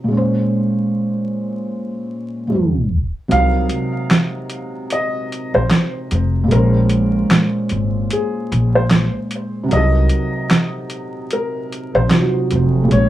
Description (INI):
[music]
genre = lo-fi hip hop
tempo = 75 BPM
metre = 4/4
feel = swing 57% on 16ths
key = unclear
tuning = A4 = 441 Hz
[part]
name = felt-muted upright piano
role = accompaniment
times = 0.0-13.1 s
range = Bb2 to Db5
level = -19 LUFS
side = right 1 dB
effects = low-pass filter, plate reverb
[part]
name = dark upright piano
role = melody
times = 3.3-13.1 s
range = Ab4 to F5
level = -21 LUFS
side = left 1 dB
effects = low-pass filter, plate reverb, analog delay
[part]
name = upright bass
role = bass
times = 3.3-13.1 s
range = F1 to C2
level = -16 LUFS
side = equal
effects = none
[part]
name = boom bap sampler-style drum kit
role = drums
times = 3.3-13.1 s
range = handclaps, hi-hat, snare drum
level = -16 LUFS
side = right 1 dB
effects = none
[sound]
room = moderate small room reverb, RT60 0.5 s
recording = vinyl crackle, tape stop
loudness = -15 LUFS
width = side -13 dB against mid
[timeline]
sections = 0.0-3.3 A section; 3.3-13.1 B section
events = break 0.0-3.3; filter sweep 0.0-3.3; tape stop 2.5-3.3; kick muted 3.3-13.1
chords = 0.1 Bbm9; 3.3 Cm7b5; 6.5 Bbm9; 9.7 Cm7b5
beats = | 0.10 0.90 1.70 2.50 | 3.30 4.10 4.90 5.70 | 6.50 7.30 8.10 8.90 | 9.70 10.50 11.30 12.10 | 12.90